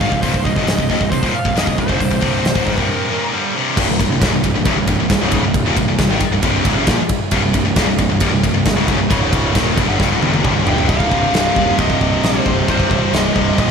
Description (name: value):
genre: heavy metal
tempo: 135 BPM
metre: 4/4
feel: straight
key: C minor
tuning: A4 = 441 Hz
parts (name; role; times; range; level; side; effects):
- high-gain lead guitar; melody; 0.0-3.3, 10.7-13.7 s; C5 to G5; -21 LUFS; right 1 dB; distortion, slapback echo
- heavy high-gain guitar; riff; 0.0-13.7 s; C2 to G3; -20 LUFS; left 11 dB; distortion
- scooped high-gain guitar; riff; 0.0-13.7 s; C2 to G3; -22 LUFS; right 10 dB; distortion
- fuzz picked electric bass; bass; 0.0-13.7 s; C1 to Bb1; -21 LUFS; equal; overdrive
- big rock drum kit; drums; 0.0-13.7 s; crash cymbal, hi-hat, kick drum, ride cymbal, snare drum, toms; -18 LUFS; equal; none
- distorted electric guitar; riff; 3.8-13.7 s; C2 to F3; -24 LUFS; left 1 dB; overdrive
room: moderate lush hall reverb, RT60 1.9 s, studio ambience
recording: big arena sound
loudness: -13 LUFS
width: side -6 dB against mid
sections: 0.0-3.8 A section; 3.8-10.9 B section; 10.9-13.7 C section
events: break 2.9-3.8; drum fill 10.0-10.9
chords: 0.0 Cm; 9.1 Db5; 9.6 Cm